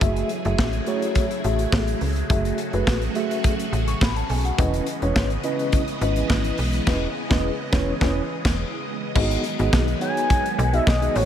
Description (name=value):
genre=early-eighties boogie funk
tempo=105 BPM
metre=4/4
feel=straight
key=F# dorian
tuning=A4 = 440 Hz
part: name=mellow tine electric piano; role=accompaniment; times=0.0-11.3 s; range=A3 to C#6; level=-26 LUFS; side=equal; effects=medium stereo tremolo
part: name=phased string machine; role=sustained chords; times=0.0-11.3 s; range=C#3 to D#5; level=-29 LUFS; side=equal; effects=ensemble chorus, phaser
part: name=slap-like FM bass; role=bass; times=0.0-11.3 s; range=E1 to C#2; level=-24 LUFS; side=equal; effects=none
part: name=modern studio drum kit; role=drums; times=0.0-11.3 s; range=crash cymbal, hi-hat, kick drum, snare drum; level=-24 LUFS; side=equal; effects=none
part: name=expressive portamento lead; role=melody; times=10.0-11.3 s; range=C#5 to G#5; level=-23 LUFS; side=left 1 dB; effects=chorus
room=light reverb, small room ambience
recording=none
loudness=-20 LUFS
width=side -10 dB against mid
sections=0.0-9.2 A section; 9.2-11.3 B section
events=band accent 6.9-9.2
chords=0.0 F#m9; 4.6 C#m9/E; 9.2 G#m7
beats=| 0.01 0.58 1.16 1.73 | 2.30 2.87 3.44 4.01 | 4.58 5.16 5.73 6.30 | 6.87 7.44 8.01 8.59 | 9.16 9.73 10.30 10.87